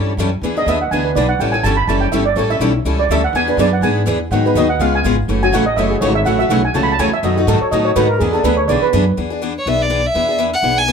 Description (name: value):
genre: acoustic string swing (jazz manouche)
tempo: 247 BPM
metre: 4/4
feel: swing 56% on 8ths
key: E mixolydian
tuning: A4 = 440 Hz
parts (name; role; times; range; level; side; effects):
- picked steel-string acoustic guitar; accompaniment; 0.0-10.9 s; B2 to A4; -19 LUFS; left 8 dB; none
- picked steel-string acoustic guitar; accompaniment; 0.0-9.0 s; B2 to C#5; -22 LUFS; right 6 dB; none
- upright bass; bass; 0.0-10.9 s; F#1 to A2; -19 LUFS; equal; none
- steel pan; second line; 0.6-8.9 s; F#4 to B5; -17 LUFS; right 4 dB; none
- warm violin; melody; 9.6-10.9 s; C#5 to G#5; -15 LUFS; equal; none
room: moderate studio reverb, RT60 0.6 s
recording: none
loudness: -13 LUFS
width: side -6 dB against mid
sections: 0.0-9.2 A section; 9.2-10.9 B section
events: steel pan solo 0.0-9.2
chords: 0.4 E7; 1.4 A7; 3.3 E7; 4.3 G#m7; 4.8 C#7; 5.3 F#m7; 7.2 B7; 8.2 E7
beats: 0.18 | 0.42 0.67 0.91 1.15 | 1.40 1.64 1.88 2.13 | 2.37 2.61 2.86 3.10 | 3.34 3.59 3.83 4.07 | 4.32 4.56 4.80 5.05 | 5.29 5.53 5.78 6.02 | 6.26 6.50 6.75 6.99 | 7.23 7.48 7.72 7.96 | 8.21 8.45 8.69 8.94 | 9.18 9.42 9.66 9.91 | 10.15 10.39 10.64 10.88